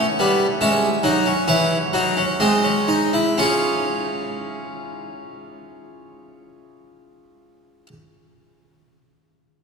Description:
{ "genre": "classical, baroque-style 3-part fugue for harpsichord", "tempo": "59-74 BPM", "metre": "3/4", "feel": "straight", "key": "unclear", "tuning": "A4 = 440 Hz", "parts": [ { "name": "harpsichord", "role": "solo", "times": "0.0-7.9 s", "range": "E3 to E5", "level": "-18 LUFS", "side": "equal", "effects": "none" } ], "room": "wet cathedral reverb, RT60 5.2 s", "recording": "recorded in a church or concert hall", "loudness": "-17 LUFS", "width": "side -5 dB against mid", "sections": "0.0-3.4 A section; 3.4-6.4 B section", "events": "slowing down 0.0-3.4", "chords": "0.0 A7 (rootless); 0.6 C#m; 2.4 G#; 3.4 C#" }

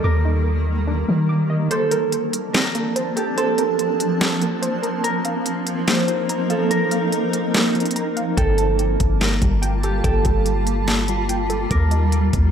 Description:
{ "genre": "hip hop, atmospheric cloud-rap", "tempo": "144 BPM", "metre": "4/4", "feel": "half-time", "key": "Bb major", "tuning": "A4 = 440 Hz", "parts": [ { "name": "concert harp", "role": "melody", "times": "0.0-12.5 s", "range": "G4 to D5", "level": "-25 LUFS", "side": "right 2 dB", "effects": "low-pass filter, diffuse ambient delay" }, { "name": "granular cloud pad", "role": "sustained chords", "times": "0.0-12.5 s", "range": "Eb3 to A5", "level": "-23 LUFS", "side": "equal", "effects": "built-in reverb, sidechain pumping" }, { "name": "warbly dusty pluck", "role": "arpeggios", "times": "0.0-12.5 s", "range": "Eb3 to D6", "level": "-28 LUFS", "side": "right 1 dB", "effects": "chorus, low-pass filter, diffuse ambient delay" }, { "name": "soft 808-style bass", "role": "bass", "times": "0.0-1.7, 8.4-12.5 s", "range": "G1 to Eb3", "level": "-19 LUFS", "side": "equal", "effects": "none" }, { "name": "smooth R&B drum kit", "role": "drums", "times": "1.7-12.4 s", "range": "hi-hat, kick drum, snare drum", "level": "-22 LUFS", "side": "equal", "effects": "none" } ], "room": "moderate plate reverb, RT60 1.7 s", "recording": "dreamy mix soaked in reverb", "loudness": "-18 LUFS", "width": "side -8 dB against mid", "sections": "0.0-1.7 A section; 1.7-12.5 B section", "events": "kick muted 1.7-8.4", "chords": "0.0 Ebmaj7; 1.7 Bbmaj9; 5.0 F7sus4; 8.4 Gm9; 11.7 Ebmaj7" }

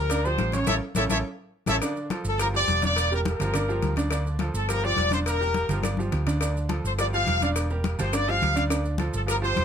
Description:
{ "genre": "latin, salsa", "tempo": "209 BPM", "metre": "4/4", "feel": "straight", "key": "D minor", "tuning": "A4 = 440 Hz", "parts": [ { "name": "clear trumpet section", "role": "melody", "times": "0.0-9.6 s", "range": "A4 to F5", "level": "-26 LUFS", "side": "left 1 dB", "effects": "none" }, { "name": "bright upright piano", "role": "accompaniment", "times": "0.0-9.6 s", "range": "C#3 to D5", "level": "-30 LUFS", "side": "right 3 dB", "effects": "none" }, { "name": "hollow-body short-scale fingered electric bass", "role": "bass", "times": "0.0-9.6 s", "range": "E1 to D2", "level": "-27 LUFS", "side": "right 1 dB", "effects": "none" }, { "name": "congas", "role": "percussion", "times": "0.1-9.6 s", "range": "none", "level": "-32 LUFS", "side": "left 4 dB", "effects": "none" }, { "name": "cowbell", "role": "percussion", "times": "0.1-9.6 s", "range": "none", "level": "-34 LUFS", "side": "left 6 dB", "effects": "none" }, { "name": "maracas", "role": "percussion", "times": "0.1-9.6 s", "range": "none", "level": "-37 LUFS", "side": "right 4 dB", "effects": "none" } ], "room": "light reverb", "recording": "close, detailed microphones", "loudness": "-23 LUFS", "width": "side -8 dB against mid", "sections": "0.0-1.8 A section; 1.8-9.6 B section", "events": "band accent 0.7-1.8; drum fill 1.0-1.8, 5.8-6.4", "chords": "0.0 Gm7; 0.7 A; 1.8 Dm; 2.4 G5; 3.0 Em7b5; 3.5 Gm7; 4.1 Dm; 4.7 G5; 5.3 Em7b5; 5.8 G5; 6.4 Dm; 7.0 G5; 7.6 Em7b5; 8.1 G5; 8.7 Dm" }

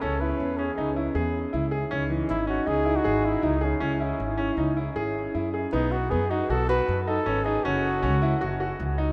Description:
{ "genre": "contemporary instrumental, contemporary", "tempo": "157 BPM", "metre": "5/4", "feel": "straight", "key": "C# minor", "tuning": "A4 = 441 Hz", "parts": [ { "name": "warm flugelhorn", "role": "melody", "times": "0.0-8.8 s", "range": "C#4 to B4", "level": "-32 LUFS", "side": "equal", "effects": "none" }, { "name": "dark French horn", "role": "second line", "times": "0.0-5.7 s", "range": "C#4 to E4", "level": "-34 LUFS", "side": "equal", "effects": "none" }, { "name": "bright concert grand piano", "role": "arpeggios", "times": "0.0-9.1 s", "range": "E3 to G#4", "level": "-31 LUFS", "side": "equal", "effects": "none" }, { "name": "upright bass", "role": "bass", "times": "0.0-9.1 s", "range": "F#1 to F#2", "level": "-31 LUFS", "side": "equal", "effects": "none" } ], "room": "wet cathedral reverb, RT60 7.0 s", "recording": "in a vast, echoing space", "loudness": "-26 LUFS", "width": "mono", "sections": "0.0-5.7 A section; 5.7-9.1 B section", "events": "none", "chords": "0.0 C#m7; 1.9 C#madd9; 3.8 C#m; 5.7 B7; 7.7 F#5" }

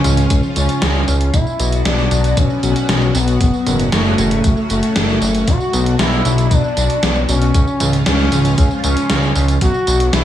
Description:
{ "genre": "synthwave", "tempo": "116 BPM", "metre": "4/4", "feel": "straight", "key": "unclear", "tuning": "A4 = 441 Hz", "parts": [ { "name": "expressive synth lead", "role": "melody", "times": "0.0-10.2 s", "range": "A3 to F#4", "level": "-19 LUFS", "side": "left 1 dB", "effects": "chorus, tape echo" }, { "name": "analog string pad", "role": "sustained chords", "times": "0.0-10.2 s", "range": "G#2 to F#4", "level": "-22 LUFS", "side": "left 1 dB", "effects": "ensemble chorus, phaser, sidechain pumping" }, { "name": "fat analog bass", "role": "bass", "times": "0.0-10.2 s", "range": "F#1 to C#2", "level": "-16 LUFS", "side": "equal", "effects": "none" }, { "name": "gated 80s digital drum machine", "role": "drums", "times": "0.0-10.2 s", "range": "hi-hat, snare drum, tambourine, toms", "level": "-20 LUFS", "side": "right 1 dB", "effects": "gated reverb, gated reverb snare, studio reverb" }, { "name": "electronic kick drum", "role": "drums", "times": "0.3-9.7 s", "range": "none", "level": "-15 LUFS", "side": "equal", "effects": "studio reverb" } ], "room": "light reverb", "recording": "small room ambience", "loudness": "-13 LUFS", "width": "side -11 dB against mid", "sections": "0.0-10.2 A section", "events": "none", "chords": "0.0 C#; 1.3 Bm; 3.4 F#m; 5.5 Bm; 7.5 C#; 9.6 Bm" }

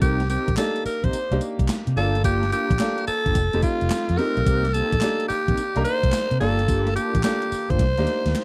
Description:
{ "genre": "R&B, new jack swing", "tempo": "108 BPM", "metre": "4/4", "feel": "swing 66% on 16ths", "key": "C dorian", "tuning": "A4 = 437 Hz", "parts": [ { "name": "raspy alto saxophone", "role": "melody", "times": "0.0-8.4 s", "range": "F4 to C5", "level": "-27 LUFS", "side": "equal", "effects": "none" }, { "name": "clear concert grand piano", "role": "accompaniment", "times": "0.0-8.4 s", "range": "A3 to Bb4", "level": "-32 LUFS", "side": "equal", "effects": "none" }, { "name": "mellow synth brass", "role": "stabs", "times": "0.0-7.8 s", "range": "A3 to Bb4", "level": "-31 LUFS", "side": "equal", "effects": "chorus, slapback echo" }, { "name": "vintage muted fingered electric bass", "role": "bass", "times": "0.0-8.3 s", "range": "F1 to C3", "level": "-26 LUFS", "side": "equal", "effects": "none" }, { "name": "gated 80s digital drum machine", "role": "drums", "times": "0.0-8.4 s", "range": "handclaps, hi-hat, kick drum, snare drum, tambourine", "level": "-28 LUFS", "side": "equal", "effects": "gated reverb, gated reverb snare, overdrive" }, { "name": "group handclap", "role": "percussion", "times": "0.6-8.4 s", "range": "none", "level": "barely audible", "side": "none", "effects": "none" } ], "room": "little or no reverb", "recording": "dry, close 1970s-style studio recording", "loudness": "-22 LUFS", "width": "mono", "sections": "0.0-8.4 A section", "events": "drum fill 7.8-8.4", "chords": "0.0 Cm7; 2.0 Gm7; 3.4 F7; 4.5 Cm7; 6.4 Gm7; 7.8 Cm7" }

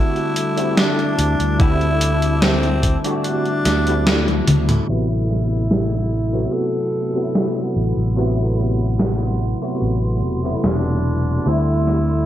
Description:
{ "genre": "vaporwave", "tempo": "73 BPM", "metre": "4/4", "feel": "straight", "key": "A dorian", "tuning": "A4 = 440 Hz", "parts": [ { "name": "raspy alto saxophone", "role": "melody", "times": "0.0-12.3 s", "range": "C4 to A4", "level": "-24 LUFS", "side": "equal", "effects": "tape echo" }, { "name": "barky tine electric piano", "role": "accompaniment", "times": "0.0-12.3 s", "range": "C3 to F#4", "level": "-22 LUFS", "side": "equal", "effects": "ensemble chorus, tape echo" }, { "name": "warbly tape-like pad", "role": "sustained chords", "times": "0.0-12.3 s", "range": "G3 to D6", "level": "-31 LUFS", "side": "left 3 dB", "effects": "chorus, built-in reverb" }, { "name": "gated 80s digital drum machine", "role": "drums", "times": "0.2-12.0 s", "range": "hi-hat, snare drum, toms", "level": "-20 LUFS", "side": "equal", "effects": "gated reverb, gated reverb snare, low-pass filter on hats, low-pass filter on snare, low-pass filter on toms, low-pass filter on room" }, { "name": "fingered electric bass", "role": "bass", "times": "1.2-12.3 s", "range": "E1 to D2", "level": "-19 LUFS", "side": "equal", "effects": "none" }, { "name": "electronic kick drum", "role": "drums", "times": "1.6-3.0 s", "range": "none", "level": "-17 LUFS", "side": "equal", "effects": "none" } ], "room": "light reverb", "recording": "low-pass filter", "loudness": "-16 LUFS", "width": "side -12 dB against mid", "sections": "0.0-4.9 A section; 4.9-12.3 B section", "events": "kick drops out 3.2-4.9; band accent 4.1-4.5; drum fill 4.3-4.9", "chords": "0.0 D9sus4; 4.9 Am69; 11.5 D9sus4" }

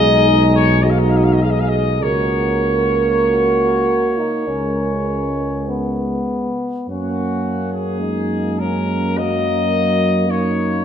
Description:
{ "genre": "classical, hymn-like piece for brass band", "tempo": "48-56 BPM", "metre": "4/4", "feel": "rubato", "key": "F# major", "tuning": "A4 = 441 Hz", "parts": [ { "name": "mellow trumpet section", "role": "melody", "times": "0.0-10.8 s", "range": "F#4 to E#5", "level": "-21 LUFS", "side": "left 5 dB", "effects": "none" }, { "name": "mellow French horn section", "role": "second line", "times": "0.0-10.8 s", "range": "A#3 to A#4", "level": "-21 LUFS", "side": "right 5 dB", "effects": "none" }, { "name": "clear euphonium", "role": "accompaniment", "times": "0.0-10.8 s", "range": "A#3 to F#4", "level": "-23 LUFS", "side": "left 1 dB", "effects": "none" }, { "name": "mellow euphonium", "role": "accompaniment", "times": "0.0-10.8 s", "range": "F#3 to A#3", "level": "-24 LUFS", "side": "right 2 dB", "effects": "none" }, { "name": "dark tuba", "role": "bass", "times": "0.0-10.8 s", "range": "B1 to F#2", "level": "-20 LUFS", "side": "equal", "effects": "none" } ], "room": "wet recital hall reverb, RT60 1.8 s", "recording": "none", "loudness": "-15 LUFS", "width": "side -8 dB against mid", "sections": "0.0-6.9 A section; 6.9-10.8 B section", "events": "none", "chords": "0.0 G#m/B; 2.0 F#/C#; 4.5 C#5; 6.9 F#" }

